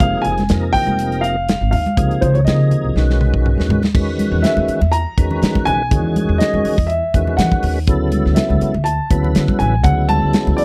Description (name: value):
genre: electric jazz fusion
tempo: 122 BPM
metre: 4/4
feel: straight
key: E major from 3.9 s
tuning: A4 = 440 Hz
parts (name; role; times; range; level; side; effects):
- dark baby grand piano; melody; 0.0-10.6 s; C5 to A#5; -22 LUFS; equal; slapback echo
- tonewheel organ; accompaniment; 0.0-10.6 s; C3 to Cb5; -24 LUFS; equal; slow rotary speaker, overdrive, chorus vibrato
- upright bass; bass; 0.0-10.6 s; F1 to E3; -20 LUFS; equal; none
- modern studio drum kit; drums; 0.0-10.6 s; crash cymbal, hi-hat, kick drum, snare drum, toms; -20 LUFS; equal; none
- congas; percussion; 0.4-10.6 s; none; -26 LUFS; equal; none
room: little or no reverb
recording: dry, close 1970s-style studio recording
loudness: -16 LUFS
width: mono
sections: 0.0-3.9 A section; 3.9-10.6 B section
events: drum fill 3.0-3.9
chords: 0.0 Fm9; 2.0 Dbmaj9; 3.0 Cb69; 3.9 Emaj9; 7.9 Dmaj9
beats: | 0.00 0.49 0.99 1.48 | 1.97 2.46 2.96 3.45 | 3.94 4.43 4.93 5.42 | 5.91 6.40 6.89 7.39 | 7.88 8.37 8.86 9.35 | 9.85 10.34